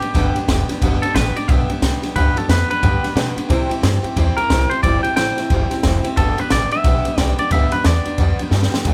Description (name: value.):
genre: rockabilly.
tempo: 179 BPM.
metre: 4/4.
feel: swing 62% on 8ths.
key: G mixolydian.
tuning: A4 = 440 Hz.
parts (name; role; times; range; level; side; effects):
twangy electric guitar; melody; 0.0-8.5 s; G4 to G5; -24 LUFS; equal; none.
picked steel-string acoustic guitar; accompaniment; 0.0-8.9 s; G2 to A4; -25 LUFS; equal; none.
upright bass; bass; 0.0-8.9 s; F1 to C3; -22 LUFS; equal; none.
compact cocktail drum kit; drums; 0.0-8.9 s; kick drum, ride cymbal, snare drum; -22 LUFS; equal; none.
room: light reverb.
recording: band playing live in one room.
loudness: -18 LUFS.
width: mono.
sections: 0.0-8.9 A section.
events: clean electric guitar solo 0.0-8.9; drum fill 8.5-8.9.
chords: 0.0 G; 3.5 C; 6.2 G.